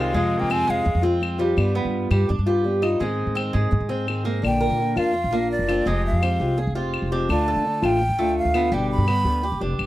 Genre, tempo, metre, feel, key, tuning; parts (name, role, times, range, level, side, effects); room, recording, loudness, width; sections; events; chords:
latin, Cuban son and guajira; 168 BPM; 4/4; straight; A4 = 440 Hz
breathy jazz flute; melody; 0.0-1.0, 4.5-9.6 s; D5 to B5; -24 LUFS; right 1 dB
bright trumpet; second line; 0.0-1.0 s; Ab3 to C4; -31 LUFS; left 7 dB
picked acoustic archtop guitar; accompaniment; 0.0-9.9 s; B2 to Ab4; -24 LUFS; left 2 dB
Cuban tres; arpeggios; 0.0-9.9 s; G3 to Bb4; -28 LUFS; right 4 dB
upright bass; bass; 0.0-9.9 s; F1 to D3; -24 LUFS; equal
claves; percussion; 0.5-9.9 s; -32 LUFS; left 6 dB
light reverb; dry, close 1970s-style studio recording; -19 LUFS; side -15 dB against mid
0.0-4.4 A section; 4.4-9.9 B section
0.1 Fm; 1.6 G7; 3.0 Abadd9; 4.4 Bb; 5.9 Fmadd9; 7.3 Dm; 8.7 G